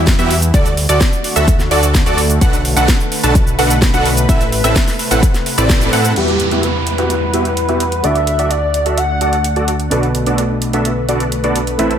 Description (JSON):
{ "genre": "EDM, festival progressive house", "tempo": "128 BPM", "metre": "4/4", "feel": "straight", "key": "E minor", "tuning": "A4 = 440 Hz", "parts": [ { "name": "lush unison pad", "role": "sustained chords", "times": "0.0-12.0 s", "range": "C3 to F#5", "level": "-22 LUFS", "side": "equal", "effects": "chorus, sidechain pumping" }, { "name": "fat analog bass", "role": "bass", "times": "0.0-12.0 s", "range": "A1 to A2", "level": "-18 LUFS", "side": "equal", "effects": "sidechain pumping" }, { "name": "electronic kick drum", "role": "drums", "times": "0.1-5.8 s", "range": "none", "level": "-14 LUFS", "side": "equal", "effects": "studio ambience" }, { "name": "house drum kit", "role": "drums", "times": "0.1-12.0 s", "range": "cabasa, crash cymbal, hi-hat, snare drum", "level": "-21 LUFS", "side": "right 1 dB", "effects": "studio ambience" }, { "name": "wide unison pluck", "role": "arpeggios", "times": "0.2-6.1 s", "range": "D5 to A5", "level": "-21 LUFS", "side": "right 1 dB", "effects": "sidechain pumping, tape echo" }, { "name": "dense compressed supersaw", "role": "riff", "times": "0.2-11.9 s", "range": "B3 to A5", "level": "-18 LUFS", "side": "right 1 dB", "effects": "sidechain pumping, low-pass filter, tape echo" }, { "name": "airy dreamy lead", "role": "melody", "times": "6.2-9.6 s", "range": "G4 to F#5", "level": "-18 LUFS", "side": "left 1 dB", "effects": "chorus, tape echo" }, { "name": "dark concert grand piano", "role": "accompaniment", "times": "6.2-12.0 s", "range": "A2 to F#5", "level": "-24 LUFS", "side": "right 1 dB", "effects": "sidechain pumping" }, { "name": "downlifter", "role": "sound effects", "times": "6.2-9.9 s", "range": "none", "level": "-24 LUFS", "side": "right 2 dB", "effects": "none" } ], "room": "light reverb, digital ambience", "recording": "none", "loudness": "-12 LUFS", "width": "side -9 dB against mid", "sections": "0.0-6.2 A section; 6.2-12.0 B section", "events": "drop 0.0-6.2; band accent 5.7", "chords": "0.0 Emadd9; 0.5 D; 2.4 Bm7; 4.3 Amadd9; 6.2 Emadd9; 8.0 D; 9.9 Bm7" }